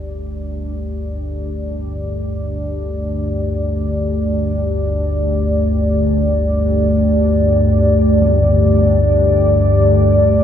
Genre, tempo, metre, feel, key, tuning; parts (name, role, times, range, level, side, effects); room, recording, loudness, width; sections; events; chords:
dark ambient drone; free time; A4 = 439 Hz
sweeping resonant pad; sustained chords; 0.0-10.4 s; A3 to D5; -18 LUFS; equal; chorus
deep rumbling drone; drone; 0.0-10.4 s; G1 to D2; -16 LUFS; equal; built-in reverb
impact; percussion; 8.2-8.4 s; -28 LUFS; left 2 dB
wet echo chamber reverb, RT60 2.2 s; small room ambience; -14 LUFS; side -9 dB against mid
0.0-10.4 A section
0.0 Gsus2